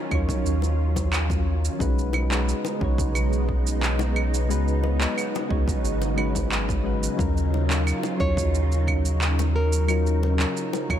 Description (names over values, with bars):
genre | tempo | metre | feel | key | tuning
sunset chillout | 89 BPM | 4/4 | straight | Eb minor | A4 = 438 Hz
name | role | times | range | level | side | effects
soft electric-piano-like synth keys | accompaniment | 0.0-11.0 s | Gb3 to Db5 | -29 LUFS | moving between left 6 dB and right 4 dB | chorus, auto-pan, tape echo
soft string machine | sustained chords | 0.0-11.0 s | C#3 to F4 | -30 LUFS | right 1 dB | phaser, ensemble chorus
warm sub bass | bass | 0.1-11.0 s | Ab1 to Eb2 | -23 LUFS | equal | none
electronic claves, shaker and handclaps | drums | 0.1-11.0 s | none | -30 LUFS | right 2 dB | overdrive
electronic kick drum | drums | 0.1-11.0 s | none | -28 LUFS | equal | overdrive
bongos | percussion | 0.6-10.9 s | none | -34 LUFS | left 7 dB | none
nylon-string guitar | melody | 8.2-10.9 s | Bb4 to Db5 | -31 LUFS | right 1 dB | tape echo
room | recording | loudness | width
little or no reverb | none | -21 LUFS | side -10 dB against mid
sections
0.0-11.0 A section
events
none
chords
0.0 Ebm9; 1.8 B69; 4.5 Db9sus4; 7.2 Ebm9